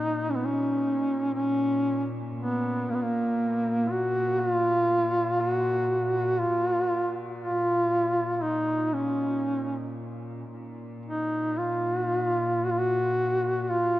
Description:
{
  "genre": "caucasian folk, Caucasian lament",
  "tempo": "58 BPM",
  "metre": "3/4",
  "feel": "rubato",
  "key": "Bb phrygian",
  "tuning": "A4 = 440 Hz",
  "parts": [
    { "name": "warm duduk", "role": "melody", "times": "0.0-14.0 s", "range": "Bb3 to Gb4", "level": "-25 LUFS", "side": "equal", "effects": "none" },
    { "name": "warm chamber cello section", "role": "drone", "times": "0.0-14.0 s", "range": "Bb2", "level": "-34 LUFS", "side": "left 2 dB", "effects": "none" }
  ],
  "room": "moderate cathedral reverb, RT60 5.7 s",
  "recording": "worn, warbling old tape, cassette tape, warbly pitch drift",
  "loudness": "-24 LUFS",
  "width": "side -15 dB against mid",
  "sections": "0.0-14.0 A section",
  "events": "none",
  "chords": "none",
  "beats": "0.28 | 1.32 2.36 3.38 | 4.39 5.39 6.39 | 7.39 8.41 9.46 | 10.52 11.57 12.62 | 13.67"
}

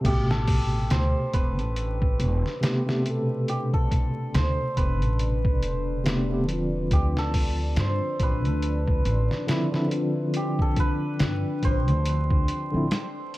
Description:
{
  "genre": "trip hop",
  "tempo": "70 BPM",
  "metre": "4/4",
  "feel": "swing 59% on 16ths",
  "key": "A minor",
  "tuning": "A4 = 441 Hz",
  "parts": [
    { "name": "hammered dulcimer", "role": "melody", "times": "0.0-13.4 s", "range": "G4 to C5", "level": "-32 LUFS", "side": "right 2 dB", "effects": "tape echo" },
    { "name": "tine electric piano", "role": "accompaniment", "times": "0.0-12.9 s", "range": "B2 to A4", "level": "-28 LUFS", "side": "equal", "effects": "tremolo, vintage 12-bit sampler grit" },
    { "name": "upright bass", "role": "bass", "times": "0.0-12.9 s", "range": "E1 to G2", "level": "-26 LUFS", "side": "equal", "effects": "none" },
    { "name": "trip hop sampler-style drum kit", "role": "drums", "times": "0.0-13.4 s", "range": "crash cymbal, hi-hat, kick drum, snare drum", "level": "-25 LUFS", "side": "equal", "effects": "small room ambience" },
    { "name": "deep dark ambient pad", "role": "sustained chords", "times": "1.3-13.4 s", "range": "D4 to D5", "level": "-35 LUFS", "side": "left 4 dB", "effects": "chorus, built-in reverb" }
  ],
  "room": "studio ambience",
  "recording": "dark, warm production, vinyl crackle",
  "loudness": "-22 LUFS",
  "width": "side -18 dB against mid",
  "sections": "0.1-13.4 A section",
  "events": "none",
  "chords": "0.1 Am9; 6.9 Dm7",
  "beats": "| 0.05 0.91 1.77 2.62 | 3.48 4.34 5.20 6.05 | 6.91 7.77 8.62 9.48 | 10.34 11.20 12.05 12.91"
}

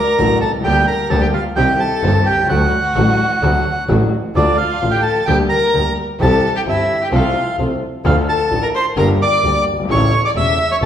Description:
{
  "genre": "tango",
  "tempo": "130 BPM",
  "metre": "4/4",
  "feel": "rubato",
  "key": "D minor from 4.3 s",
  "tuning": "A4 = 441 Hz",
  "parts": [
    { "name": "bandoneon", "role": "melody", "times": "0.0-10.9 s", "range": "D5 to E6", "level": "-18 LUFS", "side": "right 3 dB", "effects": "none" },
    { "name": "rich violin", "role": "second line", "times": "0.0-10.9 s", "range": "D4 to E5", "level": "-20 LUFS", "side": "left 3 dB", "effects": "none" },
    { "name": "warm concert grand piano", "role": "accompaniment", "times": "0.2-10.9 s", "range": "E1 to A4", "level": "-20 LUFS", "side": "left 3 dB", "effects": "none" },
    { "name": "dark studio string section", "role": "stabs", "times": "0.2-10.9 s", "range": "A3 to Bb4", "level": "-25 LUFS", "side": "right 1 dB", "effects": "none" },
    { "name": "clear double bass", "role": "bass", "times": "0.2-10.9 s", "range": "E1 to D2", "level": "-19 LUFS", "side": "right 1 dB", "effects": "none" }
  ],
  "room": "wet recital hall reverb, RT60 1.3 s",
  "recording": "recorded in a church or concert hall",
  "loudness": "-13 LUFS",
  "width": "side -9 dB against mid",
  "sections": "0.0-4.3 A section; 4.3-10.9 B section",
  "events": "none",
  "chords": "0.0 D; 0.6 Gm/D; 1.6 Cm; 2.5 D; 4.3 Dm; 5.3 Gm/D; 6.2 C; 7.1 F/C; 8.0 Dm; 9.0 Gm; 9.9 A",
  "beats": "0.18 | 0.65 1.11 1.57 2.03 | 2.49 2.96 3.42 3.88 | 4.35 4.81 5.28 5.74 | 6.20 6.66 7.12 7.58 | 8.04 8.51 8.97 9.43 | 9.89 10.35 10.81"
}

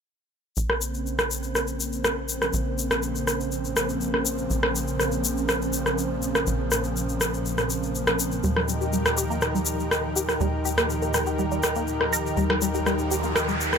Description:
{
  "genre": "melodic techno",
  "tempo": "122 BPM",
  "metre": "4/4",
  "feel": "straight",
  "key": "Bb dorian",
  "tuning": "A4 = 440 Hz",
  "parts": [
    { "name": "lush unison pad", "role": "sustained chords", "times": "0.6-13.8 s", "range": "Db3 to Bb4", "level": "-29 LUFS", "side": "right 1 dB", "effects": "chorus, vintage 12-bit sampler grit" },
    { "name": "tight sequencer bass", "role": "bass", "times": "0.6-13.8 s", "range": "Bb1 to Eb2", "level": "-31 LUFS", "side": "equal", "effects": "none" },
    { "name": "swarming drone", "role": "drone", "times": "1.7-13.8 s", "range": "Bb2 to F3", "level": "-34 LUFS", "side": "equal", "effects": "built-in reverb" },
    { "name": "egg shaker", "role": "percussion", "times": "0.6-13.8 s", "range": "none", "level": "-31 LUFS", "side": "left 7 dB", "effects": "none" },
    { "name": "electronic rim click", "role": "drums", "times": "0.7-13.8 s", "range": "none", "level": "-26 LUFS", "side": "equal", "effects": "low-pass filter on snare, low-pass filter on room" },
    { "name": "tight sequenced synth", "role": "arpeggios", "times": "8.4-13.5 s", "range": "G3 to Bb4", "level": "-28 LUFS", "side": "left 1 dB", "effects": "chorus, tape echo" },
    { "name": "riser", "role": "sound effects", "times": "12.8-13.8 s", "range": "none", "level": "-30 LUFS", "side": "right 3 dB", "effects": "none" }
  ],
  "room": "light reverb, digital ambience",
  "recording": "none",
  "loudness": "-22 LUFS",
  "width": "side -6 dB against mid",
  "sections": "0.6-13.8 A section",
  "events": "filter sweep on analog synth pad 0.6-13.8; riser 12.8-13.8",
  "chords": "0.6 Bbmadd9; 8.4 Eb",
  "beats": "| 0.57 1.06 1.55 2.04 | 2.54 3.03 3.52 4.01 | 4.50 5.00 5.49 5.98 | 6.47 6.96 7.46 7.95 | 8.44 8.93 9.42 9.91 | 10.41 10.90 11.39 11.88 | 12.37 12.87 13.36"
}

